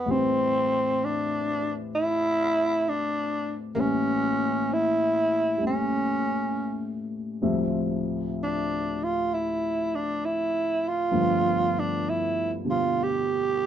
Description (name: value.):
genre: jazz ballad.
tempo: 65 BPM.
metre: 4/4.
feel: swing 68% on 8ths.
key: A minor.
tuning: A4 = 440 Hz.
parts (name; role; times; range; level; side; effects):
growling tenor saxophone; melody; 0.0-13.7 s; Bb3 to G4; -25 LUFS; right 1 dB; none.
dark upright piano; accompaniment; 0.0-13.7 s; D2 to E5; -28 LUFS; left 2 dB; none.
room: moderate club reverb, RT60 0.8 s.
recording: dark, warm production.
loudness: -24 LUFS.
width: side -10 dB against mid.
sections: 0.1-13.7 A section.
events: none.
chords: 0.1 Am9; 3.8 A7b9; 7.4 Dm11; 11.1 G7.